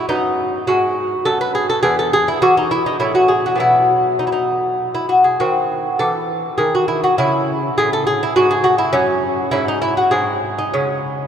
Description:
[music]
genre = classical, baroque-style dance for lute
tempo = 102 BPM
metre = 3/4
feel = rubato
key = C# minor from 5.4 s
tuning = A4 = 440 Hz
[part]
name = lute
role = solo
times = 0.0-11.3 s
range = E2 to B4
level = -14 LUFS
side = equal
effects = none
[sound]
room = wet cathedral reverb, RT60 6.4 s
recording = recorded in a church or concert hall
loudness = -14 LUFS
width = side -8 dB against mid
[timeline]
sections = 0.0-11.3 A section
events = none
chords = 0.1 B/F#; 1.8 E5; 3.0 A; 3.6 B; 5.4 D#dim7; 7.2 C#m; 9.0 N.C.; 9.6 C#5/G#; 10.1 G#; 10.8 C#5

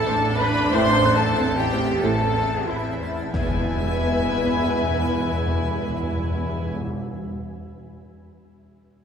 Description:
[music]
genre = cinematic, suspense film score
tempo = 92 BPM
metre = 4/4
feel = straight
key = unclear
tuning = A4 = 440 Hz
[part]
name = warm symphonic violin section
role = second line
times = 0.0-6.7 s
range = E5 to C6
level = -28 LUFS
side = left 4 dB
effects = none
[part]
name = dark symphonic viola section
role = accompaniment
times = 0.0-6.7 s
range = A3 to B4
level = -28 LUFS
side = equal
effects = none
[part]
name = twinkling granular texture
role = sustained chords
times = 0.0-6.7 s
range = C4 to A5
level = -35 LUFS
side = left 1 dB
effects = built-in reverb
[part]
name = warm symphonic cello section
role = bass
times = 0.0-6.7 s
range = E4 to C5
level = -26 LUFS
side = right 2 dB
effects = none
[part]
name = swarming drone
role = drone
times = 0.0-6.7 s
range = E2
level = -34 LUFS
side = left 2 dB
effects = built-in reverb
[part]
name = felt-muted upright piano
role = texture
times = 0.0-3.4 s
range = E5 to F#6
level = -39 LUFS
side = left 2 dB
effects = none
[part]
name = warm studio violin section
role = melody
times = 0.1-6.7 s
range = C5 to G#5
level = -33 LUFS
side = left 4 dB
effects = none
[part]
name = warm symphonic cello section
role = riff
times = 0.1-3.2 s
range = A2 to A3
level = -30 LUFS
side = right 1 dB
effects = none
[part]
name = clear chamber double bass section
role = bass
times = 0.1-6.7 s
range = A1 to E2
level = -28 LUFS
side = right 3 dB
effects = none
[part]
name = dark French horn section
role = sustained chords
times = 0.7-6.7 s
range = B3 to E4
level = -32 LUFS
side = left 4 dB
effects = none
[part]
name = dark trombone section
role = sustained chords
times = 0.7-6.7 s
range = E3 to A3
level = -35 LUFS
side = right 1 dB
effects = none
[part]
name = timpani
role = percussion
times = 3.3-7.0 s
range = E2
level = -27 LUFS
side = equal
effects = none
[part]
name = impact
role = sound effects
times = 3.3-7.0 s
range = none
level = -30 LUFS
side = left 1 dB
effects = none
[sound]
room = wet concert hall reverb, RT60 2.4 s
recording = minimal, uncompressed stereo recording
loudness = -20 LUFS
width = side -7 dB against mid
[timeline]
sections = 0.0-3.3 A section; 3.3-5.9 B section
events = impact 3.3-5.9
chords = 0.0 Am; 3.3 E

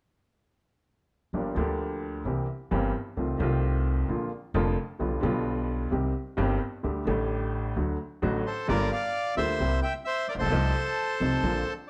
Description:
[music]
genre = tango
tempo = 131 BPM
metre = 4/4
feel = rubato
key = G minor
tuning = A4 = 440 Hz
[part]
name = bright upright piano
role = accompaniment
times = 1.3-11.6 s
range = F1 to G4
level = -32 LUFS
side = equal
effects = none
[part]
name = upright bass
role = bass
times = 1.3-11.6 s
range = F1 to D2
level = -32 LUFS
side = equal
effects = none
[part]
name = bandoneon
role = melody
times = 8.5-11.7 s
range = A4 to G5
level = -31 LUFS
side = equal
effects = none
[sound]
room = light reverb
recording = none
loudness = -28 LUFS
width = mono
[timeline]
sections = 1.3-8.7 A section; 8.7-11.9 B section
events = none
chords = 1.3 Gm7; 2.3 C7; 3.2 F7/C; 4.1 Bb; 5.0 G7/B; 5.9 Cm; 6.8 Dsus4; 7.8 D; 8.7 Gm7; 9.6 C7; 10.5 F7/C

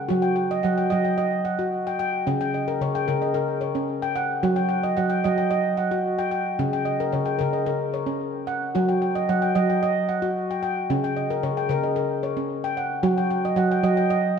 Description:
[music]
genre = world meditative, meditative tuned percussion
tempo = 111 BPM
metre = 4/4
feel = straight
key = unclear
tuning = A4 = 439 Hz
[part]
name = handpan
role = solo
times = 0.0-14.4 s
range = C#3 to G5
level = -21 LUFS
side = equal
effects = diffuse ambient delay
[sound]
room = moderate echo chamber reverb, RT60 2.0 s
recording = none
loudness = -21 LUFS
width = side -6 dB against mid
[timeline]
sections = 0.1-14.4 A section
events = none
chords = 0.1 D#m/F#; 2.3 D#7#9/C#; 4.4 D#m/F#; 6.6 D#7#9/C#; 8.7 D#m/F#; 10.9 D#7#9/C#; 13.0 D#m/F#

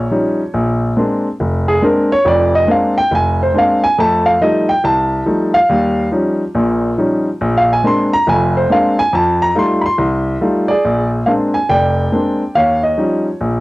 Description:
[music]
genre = solo jazz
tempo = 140 BPM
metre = 4/4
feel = swing 65% on 8ths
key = Bb mixolydian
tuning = A4 = 441 Hz
[part]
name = warm baby grand piano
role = solo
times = 0.0-13.6 s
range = F1 to C6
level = -12 LUFS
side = equal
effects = cassette tape
[sound]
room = light reverb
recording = home recording on cassette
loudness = -12 LUFS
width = side -19 dB against mid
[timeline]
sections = 0.0-10.8 A section; 10.8-13.6 B section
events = grand piano solo 0.0-10.8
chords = 0.0 Eb9; 0.5 Bb9; 4.0 F9; 5.7 Eb9; 7.4 Bb9; 9.1 F9; 10.8 Bb9; 12.6 Eb9

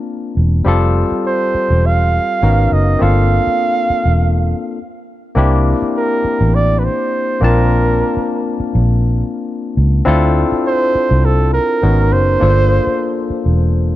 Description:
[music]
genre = lush 1970s-style soul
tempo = 102 BPM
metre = 4/4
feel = swing 54% on 16ths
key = unclear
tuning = A4 = 440 Hz
[part]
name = barky tine electric piano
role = accompaniment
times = 0.0-14.0 s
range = G3 to A5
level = -18 LUFS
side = left 4 dB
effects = none
[part]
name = vintage muted fingered electric bass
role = bass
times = 0.4-13.9 s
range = E1 to D2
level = -13 LUFS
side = equal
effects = none
[part]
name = breathy flugelhorn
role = melody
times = 1.3-13.3 s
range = A4 to F5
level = -18 LUFS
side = right 3 dB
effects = none
[sound]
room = light reverb, small room ambience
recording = dark, warm production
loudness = -12 LUFS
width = side -14 dB against mid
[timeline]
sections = 0.0-5.4 A section; 5.4-14.0 A section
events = stop 4.8-5.4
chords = 0.0 Bbmaj9; 0.7 Fmaj9; 2.4 Abm11; 3.0 Gm11; 5.4 C9; 7.4 Bbmaj9; 10.1 Dm7; 11.8 Abm11; 12.4 Gm11

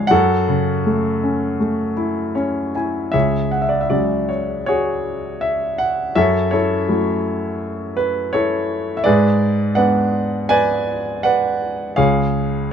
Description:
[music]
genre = classical, lyrical solo piano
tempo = 81 BPM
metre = 4/4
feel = rubato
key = F# minor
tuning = A4 = 441 Hz
[part]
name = warm baby grand piano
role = solo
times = 0.0-12.7 s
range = C#2 to G#5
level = -16 LUFS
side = equal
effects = none
[sound]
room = light reverb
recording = close, detailed microphones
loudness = -16 LUFS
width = side -8 dB against mid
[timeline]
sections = 0.0-3.1 A section; 3.1-12.7 B section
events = grand piano fill 2.0-3.1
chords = 0.1 F#m7; 3.1 C#sus4; 6.2 F#m7; 9.1 G#dim; 12.0 C#

